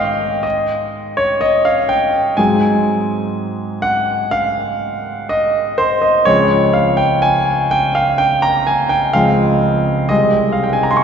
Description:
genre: classical, romantic nocturne for solo piano.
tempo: 62 BPM.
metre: 4/4.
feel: rubato.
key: Ab major.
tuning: A4 = 440 Hz.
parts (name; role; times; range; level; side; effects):
warm concert grand piano; solo; 0.0-11.0 s; C2 to Db6; -13 LUFS; equal; none.
room: wet concert hall reverb, RT60 2.4 s.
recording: heard from further back in the room, nothing above 7.7 kHz.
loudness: -13 LUFS.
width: side -7 dB against mid.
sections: 0.0-11.0 A section.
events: none.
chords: 0.0 Ab; 2.4 Ab7; 6.3 Dbmaj7; 10.1 Ab/C.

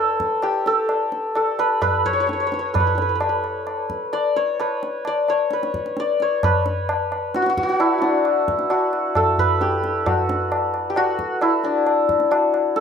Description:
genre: indian classical, Hindustani.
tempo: 131 BPM.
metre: 4/4.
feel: straight.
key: unclear.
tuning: A4 = 440 Hz.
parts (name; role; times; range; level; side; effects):
santur; melody; 0.0-12.8 s; D4 to D5; -19 LUFS; equal; none.
tabla; percussion; 0.2-12.8 s; none; -24 LUFS; left 1 dB; none.
room: moderate small room reverb, RT60 0.6 s.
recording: none.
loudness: -18 LUFS.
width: side -7 dB against mid.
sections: 0.0-6.4 A section; 6.4-12.8 B section.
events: speeding up 0.0-12.8.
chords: none.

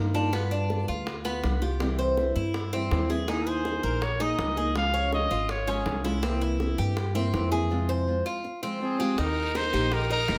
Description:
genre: latin, Cuban son and guajira.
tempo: 163 BPM.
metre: 4/4.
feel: straight.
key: unclear.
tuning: A4 = 440 Hz.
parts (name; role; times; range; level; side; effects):
nylon-string guitar; accompaniment; 0.0-10.4 s; C3 to Ab4; -33 LUFS; equal; none.
Cuban tres; arpeggios; 0.0-10.4 s; Bb3 to Eb5; -34 LUFS; equal; none.
upright bass; bass; 0.0-10.4 s; F1 to G2; -32 LUFS; equal; none.
bongos; percussion; 0.1-10.4 s; none; -38 LUFS; equal; none.
warm trumpet; melody; 3.3-6.1, 8.8-10.4 s; Ab4 to F5; -32 LUFS; equal; none.
bright chamber violin section; second line; 8.8-10.4 s; C4 to Eb4; -35 LUFS; equal; none.
guiro; percussion; 9.2-10.4 s; none; -43 LUFS; equal; none.
room: light reverb.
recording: none.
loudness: -27 LUFS.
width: mono.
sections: 0.0-9.2 A section; 9.2-10.4 B section.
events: none.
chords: 0.3 G7; 1.8 C; 3.3 Ebsus4; 4.8 Db; 6.2 C7; 7.7 Fm; 9.2 Eb.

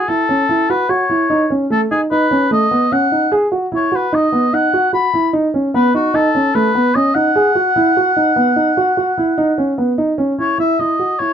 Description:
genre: contemporary instrumental, contemporary.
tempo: 149 BPM.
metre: 5/4.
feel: straight.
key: unclear.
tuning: A4 = 439 Hz.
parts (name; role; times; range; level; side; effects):
warm oboe; melody; 0.0-11.3 s; F#4 to B5; -16 LUFS; left 2 dB; none.
dark concert grand piano; arpeggios; 0.1-11.3 s; A3 to G#4; -15 LUFS; right 2 dB; none.
room: light reverb.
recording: close, detailed microphones.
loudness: -13 LUFS.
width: side -8 dB against mid.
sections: 0.0-10.2 A section; 10.2-11.3 B section.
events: none.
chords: 0.0 F#m7; 2.1 B; 10.2 F#7(no3) (rootless).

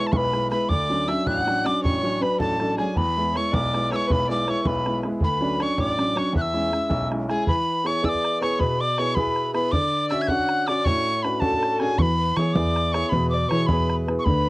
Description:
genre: celtic folk, Celtic jig.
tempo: 106 BPM (dotted quarters).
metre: 6/8.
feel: straight.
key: E mixolydian.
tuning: A4 = 443 Hz.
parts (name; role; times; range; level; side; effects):
breathy bright tin whistle; melody; 0.0-14.5 s; G#5 to G#6; -25 LUFS; equal; cassette tape.
dark fiddle; second line; 0.0-14.5 s; G#4 to F#5; -28 LUFS; left 2 dB; cassette tape.
warm baby grand piano; accompaniment; 0.0-14.5 s; A1 to G#4; -25 LUFS; right 1 dB; cassette tape.
bodhran; percussion; 0.1-14.4 s; none; -26 LUFS; right 1 dB; none.
fingered electric bass; bass; 12.0-14.5 s; D2 to E3; -23 LUFS; equal; none.
room: moderate booth ambience, RT60 0.2 s.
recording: home recording on cassette.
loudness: -20 LUFS.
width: side -21 dB against mid.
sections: 0.0-7.5 A section; 7.5-14.5 A section.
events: none.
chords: 0.0 E; 0.7 Dmaj7; 3.0 E; 5.2 Dmaj7; 6.3 E6; 7.5 E; 9.7 Dmaj7; 12.0 E.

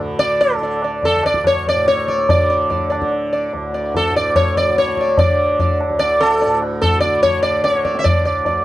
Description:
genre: indian classical, Hindustani.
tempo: 146 BPM.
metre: 7/4.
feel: straight.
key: unclear.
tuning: A4 = 440 Hz.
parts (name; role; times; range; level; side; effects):
tanpura; drone; 0.0-8.6 s; D2 to D3; -26 LUFS; equal; none.
tabla; percussion; 0.0-8.6 s; none; -21 LUFS; left 1 dB; none.
sitar; melody; 0.2-8.6 s; A4 to E5; -15 LUFS; equal; none.
room: little or no reverb.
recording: dry, close 1970s-style studio recording.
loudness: -14 LUFS.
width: side -15 dB against mid.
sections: 0.0-8.6 A section.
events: none.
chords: none.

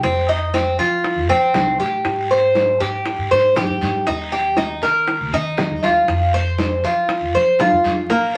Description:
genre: latin, Cuban son and guajira.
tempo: 119 BPM.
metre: 4/4.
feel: straight.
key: unclear.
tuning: A4 = 438 Hz.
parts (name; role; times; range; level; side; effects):
Cuban tres; arpeggios; 0.0-8.3 s; Bb3 to C5; -19 LUFS; equal; none.
upright bass; bass; 0.0-8.4 s; A1 to F3; -28 LUFS; equal; none.
bongos; percussion; 0.0-8.4 s; none; -27 LUFS; equal; none.
claves; percussion; 0.0-8.4 s; none; -38 LUFS; equal; none.
congas; percussion; 0.0-8.3 s; none; -30 LUFS; equal; none.
guiro; percussion; 0.0-8.4 s; none; -34 LUFS; equal; none.
room: wet studio reverb, RT60 0.5 s.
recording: vinyl crackle.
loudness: -18 LUFS.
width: mono.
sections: 0.0-8.4 A section.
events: none.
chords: 0.0 F7(no3); 2.1 Abmaj7; 4.1 Eb; 6.1 F5.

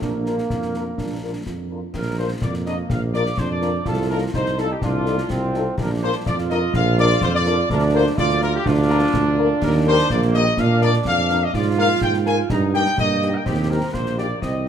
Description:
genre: military-style march for wind band.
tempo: 125 BPM.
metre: 2/4.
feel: straight.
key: Bb major.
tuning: A4 = 440 Hz.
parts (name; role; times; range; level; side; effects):
dark trumpet section; melody; 0.0-14.7 s; F4 to Bb5; -24 LUFS; left 2 dB; none.
warm euphonium; second line; 0.0-1.9 s; D4 to F4; -33 LUFS; right 6 dB; none.
clear trombone section; sustained chords; 0.0-14.7 s; Bb3 to F4; -25 LUFS; right 3 dB; none.
mellow tuba; bass; 0.0-14.7 s; Bb1 to Bb2; -22 LUFS; right 3 dB; none.
concert snare drum, concert bass drum and clash cymbals; drums; 0.0-14.6 s; none; -28 LUFS; left 2 dB; none.
warm French horn section; accompaniment; 0.3-14.7 s; Bb3 to Bb4; -27 LUFS; left 6 dB; none.
room: moderate concert hall reverb, RT60 2.0 s.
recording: none.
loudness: -17 LUFS.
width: side -8 dB against mid.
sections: 0.0-1.9 A section; 1.9-14.7 B section.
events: none.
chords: 0.0 Bb; 3.9 F7/C; 5.8 Bb; 7.7 Bb/D; 9.6 Eb; 10.6 Bb; 11.5 Bb5/Ab; 12.5 Eb/G; 13.5 Eb.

